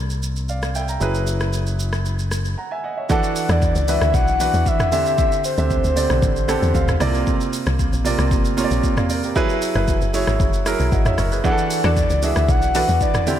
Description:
amapiano; 115 BPM; 4/4; straight; A4 = 441 Hz
warm grand piano; accompaniment; 0.0-13.4 s; C3 to Bb5; -22 LUFS; right 4 dB
fingered electric bass; bass; 0.0-2.5 s; F#1 to C2; -22 LUFS; left 1 dB
deep house drum kit; drums; 0.1-13.4 s; hi-hat, kick drum, rim click, shaker, toms; -23 LUFS; equal
breathy flute-like synth lead; melody; 3.1-7.0, 11.5-13.4 s; C5 to F#5; -22 LUFS; left 2 dB; chorus, ping-pong delay
woody log drum bass; bass; 3.5-13.0 s; F#1 to E2; -20 LUFS; left 1 dB
analog pluck; stabs; 11.8-12.9 s; D4 to A4; -29 LUFS; left 4 dB; chorus, ping-pong delay
moderate lush hall reverb, RT60 1.8 s; dreamy mix soaked in reverb; -17 LUFS; side -10 dB against mid
0.0-3.1 A section; 3.1-13.4 B section
break 2.6-3.1; drop 3.1-13.4; grand piano fill 6.5-7.3
0.0 C9sus4; 1.0 F#9sus4; 3.1 E9sus4; 4.9 D9sus4; 7.0 C9sus4; 9.4 F#9sus4; 11.4 E9sus4

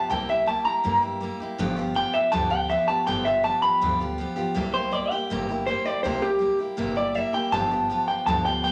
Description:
rockabilly; 162 BPM; 4/4; straight; A4 = 441 Hz
electric guitar through a small old amp; melody; 0.0-8.7 s; G4 to B5; -25 LUFS; equal
picked steel-string acoustic guitar; accompaniment; 0.0-8.7 s; G2 to G4; -31 LUFS; equal
upright bass; bass; 0.1-8.7 s; G1 to G2; -37 LUFS; equal
moderate large studio reverb, RT60 1.1 s; -25 LUFS; mono
0.0-8.7 A section
0.1 C7; 1.6 G7; 4.6 C7; 7.5 G7

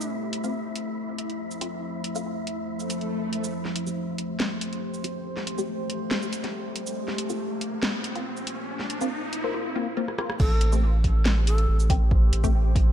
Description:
deep dubstep; 140 BPM; 4/4; half-time; A phrygian; A4 = 440 Hz
breathy long shakuhachi; melody; 0.0-0.2, 10.4-11.8 s; E4 to A4; -36 LUFS; left 1 dB; dub echo
deep dark ambient pad; sustained chords; 0.0-12.9 s; F3 to C5; -33 LUFS; left 1 dB; chorus, built-in reverb
garage drum kit; drums; 0.0-12.8 s; crash cymbal, hi-hat, rim click, shaker, snare drum; -31 LUFS; equal
wind-like tuned noise texture; texture; 0.0-3.5 s; E4 to E5; -37 LUFS; right 1 dB; built-in reverb
filtered dub chord stab; stabs; 0.4-12.5 s; A3 to G4; -33 LUFS; left 3 dB; phaser, analog chorus, dub echo
swell and riser; sound effects; 2.8-9.5 s; -35 LUFS; left 1 dB
saturated sub bass; bass; 3.5-12.9 s; F1 to Bb1; -21 LUFS; equal; tube saturation, high-pass filter
electronic kick drum; drums; 10.4-12.8 s; -22 LUFS; equal
light reverb, digital ambience; dark, warm production; -24 LUFS; side -10 dB against mid
0.0-3.5 A section; 3.5-10.4 B section; 10.4-12.9 C section
swell 2.8-3.5; build-up 3.5-10.4; riser 3.5-9.5; filter sweep on synth stab 3.5-10.4; drum fill 10.1-10.4; drop 10.4-12.9
0.1 F; 3.5 Am7; 7.0 Bbsus2; 10.4 Am7

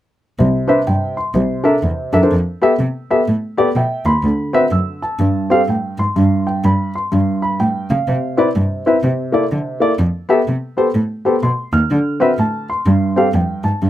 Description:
uptempo gospel; 125 BPM; 4/4; swing 62% on 8ths; C major; A4 = 436 Hz
dark upright piano; accompaniment; 0.4-13.9 s; G2 to F6; -16 LUFS; equal
dark cello; bass; 0.4-13.9 s; C2 to D3; -17 LUFS; equal
light reverb; -14 LUFS; side -13 dB against mid
0.4-8.1 A section; 8.1-13.9 B section
upright piano fill 3.5-4.2
0.4 C5; 1.4 C13; 2.3 Fmaj9#11 (rootless); 4.2 D69; 5.2 Gsus4; 6.2 Gadd11; 7.1 G7; 8.1 Cmaj7; 9.0 C13; 10.0 Fadd9(#11); 11.9 D7(no3); 12.9 G9sus4

